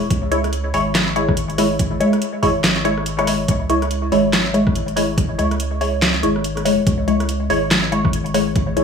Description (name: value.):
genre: deep dubstep.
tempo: 142 BPM.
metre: 4/4.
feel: swing 59% on 16ths, half-time.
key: C# minor.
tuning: A4 = 441 Hz.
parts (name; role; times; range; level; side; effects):
soft dub sub bass; bass; 0.0-8.8 s; G#1 to C#2; -24 LUFS; equal; none.
dubstep drum kit; drums; 0.1-8.8 s; handclaps, hi-hat, rim click, snare drum; -21 LUFS; equal; overdrive.
electronic kick drum; drums; 0.1-8.7 s; none; -20 LUFS; equal; none.
filtered dub chord stab; stabs; 0.3-8.8 s; G#3 to C#5; -18 LUFS; left 1 dB; phaser, analog chorus, dub echo.
room: moderate digital room reverb, RT60 1.0 s, digital ambience.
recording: studio reverb.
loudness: -16 LUFS.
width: side -6 dB against mid.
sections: 0.0-8.8 A section.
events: none.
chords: 0.0 C#m.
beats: | 0.10 0.53 0.95 1.37 | 1.79 2.22 2.64 3.06 | 3.48 3.91 4.33 4.75 | 5.17 5.60 6.02 6.44 | 6.87 7.29 7.71 8.13 | 8.55.